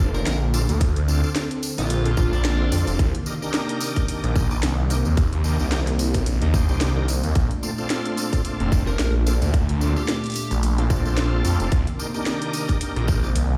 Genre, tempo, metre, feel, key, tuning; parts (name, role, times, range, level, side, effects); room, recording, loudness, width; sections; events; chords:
glitch hop; 110 BPM; 4/4; swing 56% on 16ths; A4 = 440 Hz
warm analog pad; sustained chords; 0.0-13.6 s; Bb2 to A4; -32 LUFS; equal; chorus, sidechain pumping
bright tonewheel organ; stabs; 0.0-13.3 s; C4 to D5; -33 LUFS; equal; overdrive, chorus vibrato, slow rotary speaker, vintage 12-bit sampler grit, sidechain pumping, dub echo
phased detuned saw bass; bass; 0.0-13.6 s; F1 to F2; -23 LUFS; equal; phaser, overdrive
dark smooth lead guitar; melody; 0.1-2.7, 8.9-10.5 s; D4 to Bb4; -36 LUFS; equal; overdrive, dub echo
tambourine; percussion; 0.1-13.5 s; -38 LUFS; equal
drum and bass drum kit; drums; 0.3-13.5 s; hi-hat, rim click, snare drum; -31 LUFS; equal
electronic kick drum; drums; 0.8-13.2 s; -23 LUFS; equal
digital ambience; played on a big sound system in a bare room, stone room reverb; -22 LUFS; mono
0.0-13.6 A section
0.0 Bbmaj7; 3.0 Cm7; 7.4 Bbmaj7; 11.7 Cm7